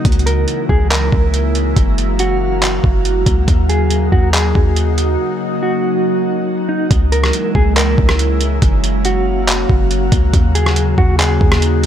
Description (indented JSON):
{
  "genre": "hip hop, atmospheric cloud-rap",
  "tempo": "140 BPM",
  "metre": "4/4",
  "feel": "half-time",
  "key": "unclear",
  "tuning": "A4 = 440 Hz",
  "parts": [
    { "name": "mellow electric guitar", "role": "melody", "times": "0.0-11.9 s", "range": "Eb4 to Bb4", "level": "-21 LUFS", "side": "right 1 dB", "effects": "tremolo, digital delay" },
    { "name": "glassy FM pad", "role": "sustained chords", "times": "0.0-11.9 s", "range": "Db3 to F5", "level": "-19 LUFS", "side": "equal", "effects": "ensemble chorus, built-in reverb, sidechain pumping" },
    { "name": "trip hop sampler-style drum kit", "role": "drums", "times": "0.0-11.9 s", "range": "handclaps, hi-hat, kick drum, rim click", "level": "-15 LUFS", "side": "equal", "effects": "none" },
    { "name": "clean 808-style bass", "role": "bass", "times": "0.1-11.9 s", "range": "Gb1 to Eb2", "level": "-16 LUFS", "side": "equal", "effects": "none" }
  ],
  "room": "little or no reverb",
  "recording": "none",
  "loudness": "-12 LUFS",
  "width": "side -10 dB against mid",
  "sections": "0.0-6.9 A section; 6.9-11.9 B section",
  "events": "break 5.2-6.9",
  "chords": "0.1 Dbm6; 1.8 Gbmaj7; 3.5 Ebm7; 6.9 Dbm6; 8.6 Gbmaj7; 10.3 Ebm7"
}